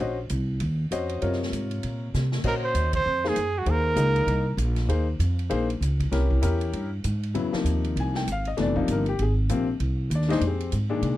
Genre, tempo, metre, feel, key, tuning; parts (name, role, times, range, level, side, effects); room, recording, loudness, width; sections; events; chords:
modal jazz; 196 BPM; 4/4; swing 60% on 8ths; Eb dorian, F dorian from 7.3 s; A4 = 440 Hz
clear baby grand piano; accompaniment; 0.0-11.2 s; Bb2 to Ab5; -28 LUFS; left 4 dB
upright bass; bass; 0.0-11.2 s; F1 to C3; -25 LUFS; right 1 dB
swinging big-band drum kit; drums; 0.3-11.1 s; crash cymbal, hi-hat, kick drum, ride cymbal, snare drum; -37 LUFS; equal
breathy trumpet; melody; 2.5-4.6 s; Gb4 to C5; -25 LUFS; right 3 dB; slapback echo
little or no reverb; -23 LUFS; side -15 dB against mid
0.0-7.3 A section; 7.3-11.2 B section
drum fill 2.1-2.4; band accent 2.9
0.0 Ebm69; 6.1 C7b9; 7.3 Fm9